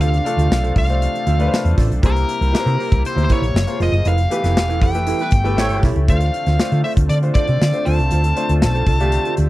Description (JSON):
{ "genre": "polished 1980s jazz-funk pop", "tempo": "118 BPM", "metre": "4/4", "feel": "straight", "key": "D minor", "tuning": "A4 = 440 Hz", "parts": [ { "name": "nasal lead guitar with a parked wah", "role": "melody", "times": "0.0-9.3 s", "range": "Bb4 to A5", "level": "-23 LUFS", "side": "left 2 dB", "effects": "overdrive" }, { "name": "clear grand piano", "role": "accompaniment", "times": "0.0-9.5 s", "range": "E3 to A5", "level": "-25 LUFS", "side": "left 2 dB", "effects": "lush chorus" }, { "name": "chorused pulse-width pad", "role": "sustained chords", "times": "0.0-9.5 s", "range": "C3 to G4", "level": "-29 LUFS", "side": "equal", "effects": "none" }, { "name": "mellow electric guitar", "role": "riff", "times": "0.0-9.4 s", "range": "E4 to E5", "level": "-28 LUFS", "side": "right 6 dB", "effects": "lush chorus" }, { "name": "hollow-body short-scale fingered electric bass", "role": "bass", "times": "0.0-9.5 s", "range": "E1 to D3", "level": "-17 LUFS", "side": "equal", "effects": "none" }, { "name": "modern studio drum kit", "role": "drums", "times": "0.0-9.5 s", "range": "hi-hat, kick drum, snare drum", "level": "-18 LUFS", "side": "equal", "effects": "none" }, { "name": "warm horn section", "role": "second line", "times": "5.2-5.9 s", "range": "G3 to C#5", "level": "-27 LUFS", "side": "right 3 dB", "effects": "none" } ], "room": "little or no reverb", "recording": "dry, close 1970s-style studio recording", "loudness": "-15 LUFS", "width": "side -16 dB against mid", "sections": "0.0-9.5 A section", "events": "grand piano fill 1.3-2.0; band accent 4.1-6.1", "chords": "0.0 Dm7; 2.0 C7; 3.6 F#maj9#11; 4.1 Fmaj9#11; 5.6 A7; 6.1 Dm7" }